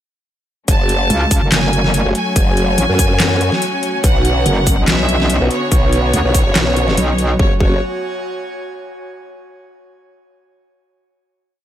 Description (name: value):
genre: heavy wobble dubstep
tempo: 143 BPM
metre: 4/4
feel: swing 54% on 16ths, half-time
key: F# minor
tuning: A4 = 440 Hz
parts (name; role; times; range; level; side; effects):
- bright chamber violin section; melody; 0.7-7.8 s; C#5 to A5; -20 LUFS; right 1 dB; ping-pong delay
- rich studio string section; sustained chords; 0.7-7.6 s; D3 to C#4; -24 LUFS; left 2 dB; sidechain pumping, low-pass filter
- formant-sweep wobble bass; bass; 0.7-7.8 s; F#1 to F#2; -17 LUFS; equal; chorus, overdrive
- dubstep drum kit; drums; 0.7-7.3 s; handclaps, hi-hat, shaker, snare drum; -18 LUFS; left 1 dB; overdrive
- electronic kick drum; drums; 0.7-7.7 s; none; -15 LUFS; equal; none
- airy breathy pad; texture; 1.0-9.0 s; B3 to G#5; -25 LUFS; right 2 dB; chorus, sidechain pumping
- metallic wobble bass; bass; 1.1-7.4 s; F#1 to D2; -16 LUFS; equal; chorus, overdrive
room: little or no reverb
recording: none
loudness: -12 LUFS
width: side -11 dB against mid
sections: 0.7-7.4 drop; 7.4-9.1 final chord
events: drop 0.7-7.4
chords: 0.7 F#m; 4.0 Bmadd9; 7.4 F#5